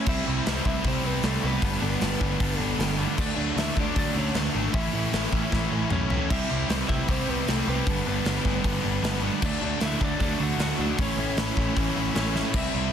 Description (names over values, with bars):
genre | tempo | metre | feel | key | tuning
punk rock | 154 BPM | 4/4 | straight | unclear | A4 = 440 Hz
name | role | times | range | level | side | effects
lightly driven lead guitar | melody | 0.0-12.9 s | A3 to F#5 | -32 LUFS | left 1 dB | none
distorted electric guitar | riff | 0.0-12.9 s | G2 to G4 | -31 LUFS | left 13 dB | overdrive
scooped high-gain guitar | riff | 0.0-12.9 s | G2 to G4 | -33 LUFS | left 1 dB | distortion
sludgy distorted guitar | riff | 0.0-12.9 s | G2 to D4 | -30 LUFS | right 12 dB | overdrive
growling picked electric bass | bass | 0.1-12.9 s | G1 to D2 | -30 LUFS | equal | overdrive
big rock drum kit | drums | 0.1-12.6 s | crash cymbal, hi-hat, kick drum, snare drum, splash cymbal, toms | -28 LUFS | equal | none
room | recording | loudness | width
little or no reverb | dense, heavily limited modern master | -23 LUFS | side -8 dB against mid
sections
0.0-6.3 A section; 6.3-12.9 A section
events
drum fill 5.5-6.3, 12.4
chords
0.1 C; 1.6 G; 3.2 D; 4.7 A; 6.3 C; 7.9 G; 9.4 D; 11.0 A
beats
| 0.07 0.46 0.84 1.23 | 1.62 2.01 2.40 2.79 | 3.18 3.57 3.96 4.35 | 4.74 5.13 5.52 5.91 | 6.30 6.69 7.08 7.47 | 7.86 8.25 8.64 9.03 | 9.42 9.81 10.20 10.59 | 10.98 11.38 11.77 12.16 | 12.55